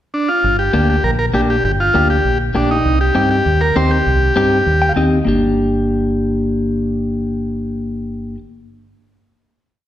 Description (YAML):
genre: latin, cumbia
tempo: 199 BPM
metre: 4/4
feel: straight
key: G minor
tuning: A4 = 440 Hz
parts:
  - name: overdriven combo organ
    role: melody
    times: 0.1-4.9 s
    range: D4 to C5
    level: -16 LUFS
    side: equal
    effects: none
  - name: deep dub fingered electric bass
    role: bass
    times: 0.4-8.4 s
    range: G1 to G2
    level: -18 LUFS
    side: right 1 dB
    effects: none
  - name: clean electric guitar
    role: accompaniment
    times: 0.7-8.4 s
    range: Bb3 to G5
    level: -18 LUFS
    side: left 2 dB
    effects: none
room: wet recital hall reverb, RT60 1.4 s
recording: recorded in a church or concert hall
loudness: -13 LUFS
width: side -12 dB against mid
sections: 0.0-0.4 pickup bar; 0.4-5.3 A section; 5.3-7.7 final chord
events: clean electric guitar fill 4.7-5.3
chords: 0.4 Gm; 2.9 Cm; 5.3 Gm